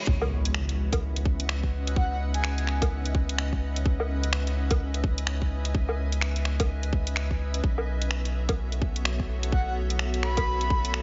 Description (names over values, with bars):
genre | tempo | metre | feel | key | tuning
future garage | 127 BPM | 4/4 | swing 61% on 16ths | C# minor | A4 = 440 Hz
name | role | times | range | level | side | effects
granular cloud pad | sustained chords | 0.0-11.0 s | B3 to G#5 | -38 LUFS | equal | built-in reverb, sidechain pumping
reverse cymbal and impact | sound effects | 0.0-2.0 s | none | -39 LUFS | equal | none
warm sub bass | bass | 0.1-11.0 s | B1 to C#2 | -30 LUFS | equal | sidechain pumping
electronic kick drum | drums | 0.1-10.8 s | none | -28 LUFS | equal | overdrive, studio reverb
garage drum kit | drums | 0.2-11.0 s | finger snaps, hi-hat, woodblock | -34 LUFS | equal | overdrive, studio reverb
breathy flute-like synth lead | melody | 2.0-2.7, 9.5-10.9 s | F#5 to B5 | -35 LUFS | equal | analog chorus, cassette tape, analog delay
room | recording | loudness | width
light reverb | nothing above 7.6 kHz | -27 LUFS | mono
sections
0.1-11.0 A section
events
impact 0.1-2.0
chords
0.1 C#m11; 7.6 B7sus4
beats
| 0.07 0.55 1.02 1.49 | 1.96 2.44 2.91 3.38 | 3.85 4.33 4.80 5.27 | 5.74 6.22 6.69 7.16 | 7.63 8.11 8.58 9.05 | 9.52 9.99 10.47 10.94